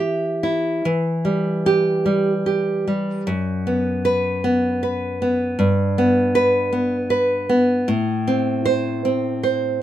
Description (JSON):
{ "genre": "romantic piece for solo classical guitar", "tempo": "45-54 BPM (dotted quarters)", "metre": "6/8", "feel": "rubato", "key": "E minor", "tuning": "A4 = 441 Hz", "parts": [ { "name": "nylon-string guitar", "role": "solo", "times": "0.0-9.8 s", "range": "F#2 to E5", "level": "-18 LUFS", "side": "equal", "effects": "none" } ], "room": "moderate studio reverb, RT60 0.6 s", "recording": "minimal, uncompressed stereo recording", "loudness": "-18 LUFS", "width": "side -12 dB against mid", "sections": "0.8-9.8 A section", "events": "none", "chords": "0.0 Em; 3.3 B5/F#; 5.6 G; 7.9 Am" }